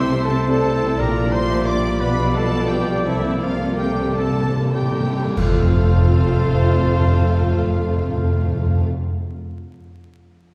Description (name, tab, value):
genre	classical, dramatic, fast romantic movement for symphony orchestra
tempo	93-122 BPM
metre	4/4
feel	rubato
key	F major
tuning	A4 = 439 Hz
part	warm symphonic violin section	melody	0.0-8.9 s	E5 to D6	-35 LUFS	equal	none
part	dark clarinet	second line	0.0-8.8 s	A4 to E5	-34 LUFS	equal	none
part	mellow hollow concert flute	second line	0.0-8.9 s	A4 to D6	-35 LUFS	equal	none
part	rich studio violin section	second line	0.0-8.9 s	A3 to C5	-33 LUFS	equal	none
part	warm oboe	second line	0.0-8.9 s	E4 to F5	-34 LUFS	equal	none
part	rich symphonic viola section	accompaniment	0.0-8.9 s	E4 to D5	-30 LUFS	equal	none
part	mellow French horn section	sustained chords	0.0-8.9 s	G3 to A4	-32 LUFS	equal	none
part	concert harp	arpeggios	0.0-9.2 s	Bb2 to C5	-31 LUFS	equal	none
part	clear trumpet	stabs	0.0-8.9 s	C5 to D5	-32 LUFS	equal	none
part	rich studio cello section	bass	0.0-8.8 s	F2 to C3	-27 LUFS	equal	none
part	rich studio double bass section	bass	0.0-8.9 s	F1 to C2	-26 LUFS	equal	none
part	cymbal swell, clash cymbals and concert bass drum	percussion	1.0-6.6 s	none	-30 LUFS	equal	none
part	timpani	percussion	3.1-8.9 s	F2 to C3	-23 LUFS	equal	none
room	wet scoring stage reverb, RT60 1.9 s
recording	heard from further back in the room, vinyl crackle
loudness	-19 LUFS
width	mono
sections	0.0-5.4 A section; 5.4-10.4 B section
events	slowing down 0.0-5.4; timpani fill 3.1-5.4; band accent 5.4-6.0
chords	0.0 Am/C; 1.0 Gm7/Bb; 2.0 G7/B; 3.1 Csus2; 5.4 F